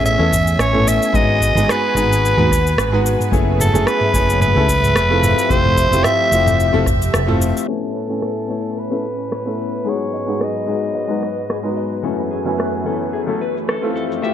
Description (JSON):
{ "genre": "sunset chillout", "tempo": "110 BPM", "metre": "4/4", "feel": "swing 55% on 16ths", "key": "A lydian", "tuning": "A4 = 440 Hz", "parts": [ { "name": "raspy soprano saxophone", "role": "melody", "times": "0.0-11.8 s", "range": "A4 to E5", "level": "-19 LUFS", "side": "equal", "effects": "digital delay" }, { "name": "clear grand piano", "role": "accompaniment", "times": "0.0-14.3 s", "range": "F#2 to G#5", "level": "-21 LUFS", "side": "moving between left 6 dB and right 2 dB", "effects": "auto-pan, ping-pong delay" }, { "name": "lush unison pad", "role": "sustained chords", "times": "0.0-14.3 s", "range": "F2 to G#5", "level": "-25 LUFS", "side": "equal", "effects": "chorus" }, { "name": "mellow fretless electric bass", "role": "bass", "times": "0.0-7.5 s", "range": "F1 to E2", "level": "-18 LUFS", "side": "equal", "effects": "none" }, { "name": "smooth R&B drum kit", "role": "drums", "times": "0.1-14.3 s", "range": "rim click, shaker, toms", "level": "-22 LUFS", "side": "right 1 dB", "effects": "none" }, { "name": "electronic kick drum", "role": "drums", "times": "0.3-7.0 s", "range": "none", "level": "-22 LUFS", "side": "equal", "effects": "none" }, { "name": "clean electric guitar", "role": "arpeggios", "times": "7.7-14.3 s", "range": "G#4 to E5", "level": "-29 LUFS", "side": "left 5 dB", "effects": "low-pass filter, ping-pong delay" } ], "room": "moderate concert hall reverb, RT60 2.4 s", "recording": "low-pass filter", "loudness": "-15 LUFS", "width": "side -10 dB against mid", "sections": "0.0-7.7 A section; 7.7-14.3 B section", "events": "filter sweep on clean electric guitar 7.7-14.3; filter sweep 7.7-14.3", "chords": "0.0 Amaj9; 1.1 G#m7; 3.3 F#m11; 5.2 Fmaj9; 7.7 Amaj9; 9.9 G#m7; 12.0 F#m11" }